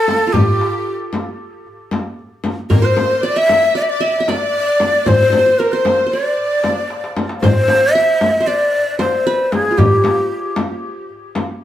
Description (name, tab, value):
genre	Turkish makam ensemble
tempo	229 BPM (eighths)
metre	9/8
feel	straight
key	D makam ussak, G makam hicaz from 7.4 s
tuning	A4 = 440 Hz
part	breathy bright ney	melody	0.0-10.6 s	G4 to E5-23c	-15 LUFS	left 1 dB	tape echo
part	qanun	second line	0.0-11.1 s	F4 to E5-30c	-23 LUFS	right 3 dB	none
part	rich symphonic violin section	second line	0.0-7.2 s	G4 to E5-30c	-24 LUFS	equal	none
part	darbuka	percussion	0.1-11.6 s	none	-20 LUFS	equal	none
part	frame drum	percussion	0.1-11.5 s	none	-20 LUFS	left 2 dB	none
room	wet studio reverb, RT60 0.6 s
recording	heard from further back in the room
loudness	-13 LUFS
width	side -12 dB against mid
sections	0.0-7.4 A section; 7.4-11.6 B section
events	drum fill 6.9-7.4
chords	none